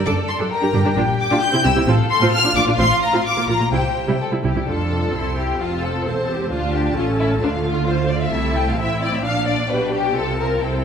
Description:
quick classical-period movement for string orchestra; 132 BPM; 2/4; straight; F major; A4 = 441 Hz
rich studio violin section; second line; 0.0-10.8 s; D4 to G5; -23 LUFS; left 3 dB
clear studio violin section; melody; 0.1-10.8 s; F5 to G6; -24 LUFS; left 3 dB
rich studio viola section; accompaniment; 0.1-10.8 s; G3 to A4; -23 LUFS; right 1 dB
rich studio cello section; bass; 0.1-10.8 s; C2 to D3; -25 LUFS; right 3 dB
rich symphonic double bass section; bass; 0.1-10.8 s; E1 to D2; -24 LUFS; right 1 dB
moderate concert hall reverb, RT60 2.0 s; minimal, uncompressed stereo recording; -17 LUFS; side -7 dB against mid
0.0-4.7 A section; 4.7-10.8 B section
0.1 D; 0.5 Gm; 1.0 Gm7; 1.4 C; 1.9 F/A; 2.3 Bb; 2.8 F; 3.2 Bb; 3.7 C; 4.7 F; 5.1 C; 5.6 F; 6.5 Dm; 7.0 A; 7.4 Dm; 8.3 Am/C; 9.2 Bb; 9.7 G/B; 10.2 F/C
| 0.06 0.51 | 0.96 1.42 | 1.87 2.32 | 2.78 3.25 | 3.72 4.20 | 4.67 5.14 | 5.60 6.05 | 6.51 6.96 | 7.42 7.87 | 8.33 8.78 | 9.24 9.70 | 10.15 10.62

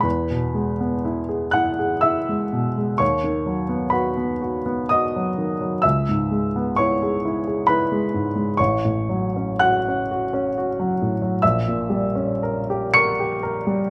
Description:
classical, romantic nocturne for solo piano; 54-69 BPM; 3/4; rubato; E major; A4 = 439 Hz
warm baby grand piano; solo; 0.0-13.9 s; A1 to C#7; -22 LUFS; equal
light reverb; -22 LUFS; mono
0.0-13.9 A section
0.0 E; 3.0 B/D#; 5.8 C#m7; 8.6 F#m/A; 11.4 A#dim7
| 0.05 1.06 2.04 | 3.01 3.95 4.91 | 5.84 6.79 7.69 | 8.59 9.61 10.55 | 11.42 12.41 13.42

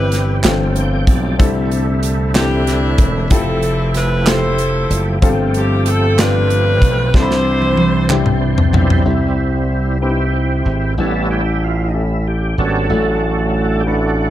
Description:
slow gospel; 63 BPM (dotted quarters); 6/8; straight; C major; A4 = 440 Hz
edgy saxophone section; melody; 0.0-8.4 s; C4 to C5; -19 LUFS; equal
warm upright piano; accompaniment; 0.0-14.3 s; G2 to B5; -22 LUFS; left 4 dB
overdriven tonewheel organ; sustained chords; 0.0-14.3 s; D3 to G5; -21 LUFS; right 3 dB; slow rotary speaker, chorus vibrato
glassy slap bass; bass; 0.0-14.3 s; E1 to C2; -17 LUFS; equal
modern studio drum kit; drums; 0.1-9.0 s; hi-hat, kick drum, snare drum, toms; -16 LUFS; equal
group handclap; percussion; 0.4-8.4 s; -23 LUFS; right 4 dB
light reverb, small room ambience; -13 LUFS; side -13 dB against mid
0.0-9.1 A section; 9.1-14.3 B section
tonewheel organ fill 0.4-1.4; drum fill 7.1-9.1; tonewheel organ solo 9.1-14.3
0.4 G9sus4; 1.4 C69; 3.3 Fmaj9; 5.2 G9sus4; 7.1 Cmaj9; 9.1 C; 11.0 A7; 12.9 D/A
0.44 | 1.40 2.35 | 3.31 4.27 | 5.22 6.18 | 7.14 8.10 | 9.06 10.02 | 10.98 11.94 | 12.90 13.87

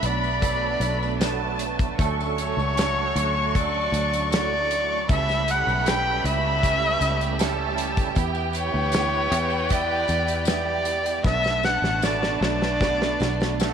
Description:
pop ballad; 78 BPM; 4/4; straight; D major; A4 = 439 Hz
dark erhu; melody; 0.0-13.7 s; C#5 to G5; -25 LUFS; left 1 dB
warm studio violin section; second line; 0.0-13.7 s; G5 to C#6; -30 LUFS; left 2 dB
barky tine electric piano; accompaniment; 0.0-13.7 s; B2 to B4; -30 LUFS; right 14 dB; ensemble chorus
warm studio string section; sustained chords; 0.0-13.7 s; C#3 to B4; -32 LUFS; equal
fingered electric bass; bass; 0.0-13.7 s; A1 to E2; -28 LUFS; left 1 dB
natural country drum kit; drums; 0.0-13.7 s; hi-hat, kick drum, snare drum; -26 LUFS; equal
tambourine; percussion; 0.2-13.7 s; -40 LUFS; left 17 dB
light reverb, small room ambience; 1960s-style stereo with parts hard left and right; -21 LUFS; side -8 dB against mid
0.0-13.7 A section
drum fill 11.2-13.7
0.0 Bm7; 2.0 Dmaj7; 5.1 A7; 8.2 Em; 11.2 Bm7
0.42 1.20 | 1.99 2.77 3.54 4.32 | 5.09 5.86 6.63 7.39 | 8.16 8.93 9.70 10.47 | 11.24 12.02 12.80 13.60

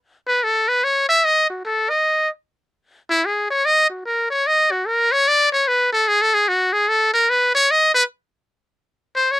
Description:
jazz; 149 BPM; 4/4; swing 65% on 8ths; B mixolydian; A4 = 440 Hz
trumpet with metal mute; solo; 0.3-9.4 s; E4 to E5; -15 LUFS; equal
little or no reverb; dry, close 1970s-style studio recording; -16 LUFS; side -15 dB against mid
0.0-8.5 A section
muted trumpet solo 0.0-8.5
| 0.39 0.80 1.20 1.60 | 2.01 2.41 2.82 3.22 | 3.62 4.03 4.43 4.84 | 5.24 5.64 6.05 6.45 | 6.86 7.26 7.66 8.07 | 8.47 8.87 9.28

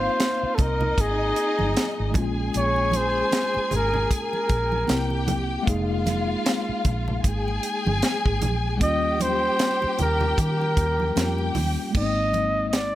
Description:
lush 1970s-style soul; 76 BPM; 4/4; swing 58% on 16ths; A4 = 440 Hz
breathy flugelhorn; melody; 0.0-12.9 s; Ab4 to Eb5; -24 LUFS; equal
warm studio string section; second line; 0.0-11.9 s; Eb4 to Ab5; -29 LUFS; left 2 dB
mellow tine electric piano; accompaniment; 0.0-12.9 s; G3 to Ab4; -30 LUFS; left 1 dB; medium stereo tremolo
vintage muted fingered electric bass; bass; 0.0-12.9 s; F1 to Eb3; -27 LUFS; equal
tight funk drum kit; drums; 0.2-12.9 s; crash cymbal, hi-hat, kick drum, snare drum; -25 LUFS; equal
congas; percussion; 0.6-12.9 s; -32 LUFS; right 4 dB
light reverb, studio reverb; -21 LUFS; side -14 dB against mid
0.0-11.9 A section; 11.9-12.9 B section
0.0 Ab69; 2.1 Bbm7; 4.9 C7; 5.7 Fm11; 8.8 Eb7; 11.9 Abadd9
0.19 0.97 1.76 | 2.54 3.33 4.11 4.89 | 5.68 6.46 7.25 8.03 | 8.81 9.60 10.38 11.16 | 11.94 12.73

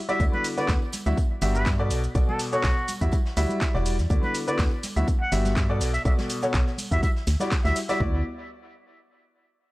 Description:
piano house; 123 BPM; 4/4; swing 54% on 16ths; D major; A4 = 440 Hz
trumpet with straight mute; melody; 0.1-8.0 s; F#4 to F#5; -31 LUFS; equal; tape echo
clear upright piano; riff; 0.1-8.2 s; G2 to E5; -28 LUFS; left 1 dB; sidechain pumping, tape echo
jazz brush drum kit; drums; 0.1-8.0 s; hi-hat, snare drum; -43 LUFS; left 1 dB; high-pass filter on hats, high-pass filter on snare, high-pass filter on room
punchy analog drum machine; drums; 0.1-8.0 s; handclaps, hi-hat, shaker; -33 LUFS; equal
organ-like FM bass; bass; 0.2-8.2 s; E1 to G2; -25 LUFS; equal; sidechain pumping
house drum kit; drums; 0.2-8.1 s; kick drum, toms; -24 LUFS; equal
tambourine and congas; percussion; 0.2-8.0 s; -40 LUFS; right 2 dB
small room ambience; dry, gritty hardware recording; -22 LUFS; side -20 dB against mid
0.0-8.0 A section; 8.0-9.7 B section
drop 0.0-8.0
0.2 D69; 1.2 Gmaj7; 1.9 Bm7; 2.9 Em9; 4.1 D69; 5.1 Gmaj7; 5.8 Bm7; 6.8 Em9; 8.0 D69
| 0.20 0.69 1.18 1.66 | 2.15 2.64 3.13 3.61 | 4.10 4.59 5.08 5.57 | 6.05 6.54 7.03 7.52 | 8.01

